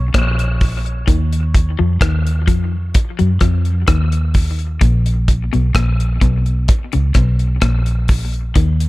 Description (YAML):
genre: dub reggae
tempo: 64 BPM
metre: 4/4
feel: straight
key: Bb phrygian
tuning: A4 = 441 Hz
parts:
  - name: vintage muted fingered electric bass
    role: bass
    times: 0.0-8.9 s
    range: Bb1 to Gb2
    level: -16 LUFS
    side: equal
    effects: none
  - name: electric guitar at the edge of break-up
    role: riff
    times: 0.1-8.8 s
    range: Bb2 to Gb3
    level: -23 LUFS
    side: left 6 dB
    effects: dub echo
  - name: damped 70s drum kit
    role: drums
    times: 0.1-8.9 s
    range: hi-hat, kick drum, rim click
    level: -16 LUFS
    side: equal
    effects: none
room: small room ambience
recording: echo-heavy mix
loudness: -13 LUFS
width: side -19 dB against mid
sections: 0.0-8.9 A section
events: none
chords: none